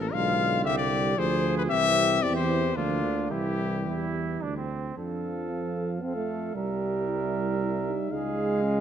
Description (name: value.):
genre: classical, brass quintet.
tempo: 114 BPM.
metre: 3/4.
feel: rubato.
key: unclear.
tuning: A4 = 438 Hz.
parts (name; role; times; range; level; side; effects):
warm trumpet; melody; 0.0-8.8 s; F4 to F5; -29 LUFS; left 6 dB; none.
mellow French horn; accompaniment; 0.0-8.8 s; F3 to A4; -35 LUFS; left 3 dB; none.
mellow tuba; bass; 0.0-8.8 s; A1 to F2; -31 LUFS; right 3 dB; none.
clear flugelhorn; second line; 0.1-8.8 s; C4 to Bb4; -34 LUFS; right 6 dB; none.
mellow trombone; accompaniment; 0.1-8.8 s; D3 to C4; -31 LUFS; right 3 dB; none.
room: moderate scoring stage reverb, RT60 1.9 s.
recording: none.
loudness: -25 LUFS.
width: side -9 dB against mid.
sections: 0.0-5.0 A section; 5.0-8.8 B section.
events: none.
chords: 0.1 Bdim7; 1.7 C; 2.8 Bb/D; 3.3 C; 5.0 F; 6.6 C7; 8.1 Db.